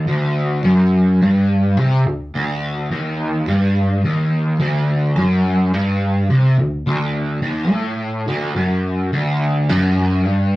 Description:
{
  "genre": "rock",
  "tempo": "106 BPM",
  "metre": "4/4",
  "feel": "straight",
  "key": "unclear",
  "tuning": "A4 = 440 Hz",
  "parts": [
    { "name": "overdriven semi-hollow guitar", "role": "solo", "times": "0.0-10.6 s", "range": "D2 to C3", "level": "-15 LUFS", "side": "equal", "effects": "rotary speaker" }
  ],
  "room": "wet studio reverb, RT60 0.5 s",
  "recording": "rough rehearsal-room recording, tube saturation",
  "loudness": "-15 LUFS",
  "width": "side -18 dB against mid",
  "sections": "0.0-10.6 A section",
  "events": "none",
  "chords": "none",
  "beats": "| 0.09 0.65 1.22 1.79 | 2.35 2.92 3.48 4.05 | 4.62 5.18 5.75 6.32 | 6.88 7.45 8.01 8.58 | 9.14 9.71 10.28"
}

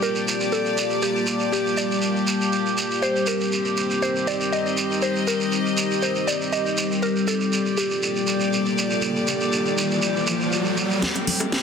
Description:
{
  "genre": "deep house",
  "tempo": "120 BPM",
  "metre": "4/4",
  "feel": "swing 54% on 16ths",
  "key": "G minor",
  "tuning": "A4 = 440 Hz",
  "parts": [
    { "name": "mallet-like synth pluck", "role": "melody", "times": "0.0-10.5 s", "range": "G4 to Eb5", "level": "-27 LUFS", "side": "equal", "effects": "chorus, phaser, tape echo" },
    { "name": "deep dark ambient pad", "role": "sustained chords", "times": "0.0-11.6 s", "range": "G3 to A5", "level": "-25 LUFS", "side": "left 2 dB", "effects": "chorus, built-in reverb" },
    { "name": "shekere", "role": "percussion", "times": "0.0-11.0 s", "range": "none", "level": "-27 LUFS", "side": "right 4 dB", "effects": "none" },
    { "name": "rich studio string section", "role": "texture", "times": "0.0-11.6 s", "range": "C4 to Eb5", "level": "-26 LUFS", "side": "left 1 dB", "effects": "none" },
    { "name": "riser", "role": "sound effects", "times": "8.5-11.6 s", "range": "none", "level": "-28 LUFS", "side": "right 1 dB", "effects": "none" },
    { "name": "house drum kit", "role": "drums", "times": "11.0-11.6 s", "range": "hi-hat, snare drum", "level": "-22 LUFS", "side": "right 1 dB", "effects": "low-pass filter on snare, low-pass filter on hats, low-pass filter on room" },
    { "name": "congas and bongos", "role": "percussion", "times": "11.0-11.5 s", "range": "none", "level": "-28 LUFS", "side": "left 3 dB", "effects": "none" }
  ],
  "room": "wet lush hall reverb, RT60 1.6 s, studio ambience",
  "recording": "dense, heavily limited modern master",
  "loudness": "-20 LUFS",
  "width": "side -6 dB against mid",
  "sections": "0.0-11.0 A section",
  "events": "riser 8.5-11.0, 11.0-11.6; drum fill 11.0-11.6",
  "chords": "0.0 Gm9; 3.0 Cm7; 7.0 Gm9; 11.0 C7(no3)",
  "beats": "0.02 0.52 | 1.02 1.52 2.02 2.52 | 3.02 3.52 4.02 4.52 | 5.02 5.52 6.02 6.52 | 7.02 7.52 8.02 8.52 | 9.02 9.52 10.02 10.52 | 11.02 11.52"
}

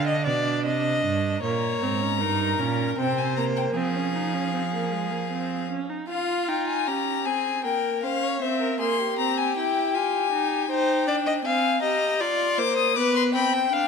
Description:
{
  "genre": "classical, baroque-style fugue for string quartet",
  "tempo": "78 BPM",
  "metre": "3/4",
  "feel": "straight",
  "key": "F minor",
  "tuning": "A4 = 440 Hz",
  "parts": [
    { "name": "warm violin", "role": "second line", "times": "0.0-13.9 s", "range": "F4 to G5", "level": "-27 LUFS", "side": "left 2 dB", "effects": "none" },
    { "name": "rich viola", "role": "accompaniment", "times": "0.0-13.9 s", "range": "Ab3 to G4", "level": "-28 LUFS", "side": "right 3 dB", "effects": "none" },
    { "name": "rich cello", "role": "bass", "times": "0.0-5.7 s", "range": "G2 to F3", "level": "-28 LUFS", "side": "right 7 dB", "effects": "none" },
    { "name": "rich violin", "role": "melody", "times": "1.4-13.9 s", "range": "E5 to Eb6", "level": "-27 LUFS", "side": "left 10 dB", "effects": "none" }
  ],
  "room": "moderate concert hall reverb, RT60 2.3 s",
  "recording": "none",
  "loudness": "-22 LUFS",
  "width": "side -5 dB against mid",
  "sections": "0.0-1.4 A section; 1.4-6.1 B section; 6.1-13.9 C section",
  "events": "none",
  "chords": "0.0 G (rootless); 0.7 Cm; 1.4 Gdim; 3.0 C5; 3.8 Fm; 7.6 Gm7b5/Bb; 8.4 C7; 10.0 Fm; 10.7 Cm; 12.2 Bbadd9; 13.0 G/B",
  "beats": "0.66 | 1.43 2.21 2.99 | 3.76 4.54 5.31 | 6.09 6.87 7.65 | 8.42 9.19 9.95 | 10.70 11.45 12.21 | 12.97 13.73"
}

